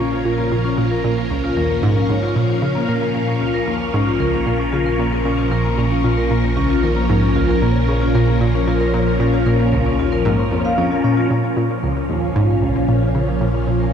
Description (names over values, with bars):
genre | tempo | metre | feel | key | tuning
ambient, sequencer-driven space music | 114 BPM | 4/4 | straight | Bb minor | A4 = 440 Hz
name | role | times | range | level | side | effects
phased string machine | sustained chords | 0.0-13.9 s | Bb2 to F5 | -21 LUFS | equal | ensemble chorus, phaser
vibraphone with medium hard mallets | arpeggios | 0.0-13.9 s | Bb3 to F5 | -21 LUFS | left 3 dB | auto-pan, low-pass filter, ping-pong delay
analog pluck | riff | 0.0-13.9 s | Db2 to Db3 | -20 LUFS | right 1 dB | chorus, ping-pong delay
round analog bass | bass | 0.0-13.9 s | Bb1 | -25 LUFS | equal | none
bubbling stepped-filter texture | texture | 11.3-13.9 s | Ab5 | -44 LUFS | right 3 dB | none
room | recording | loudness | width
wet huge ambient reverb, RT60 8.4 s | dark, warm production | -15 LUFS | side -8 dB against mid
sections
0.0-11.3 A section; 11.3-13.9 B section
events
fade-in on string machine 0.0-11.3; fade-in on analog synth bass 0.0-11.3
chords
0.0 Bbm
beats
0.25 | 0.78 1.30 1.83 2.36 | 2.88 3.41 3.94 4.46 | 4.99 5.52 6.04 6.57 | 7.09 7.62 8.15 8.67 | 9.20 9.73 10.25 10.78 | 11.30 11.83 12.36 12.88 | 13.41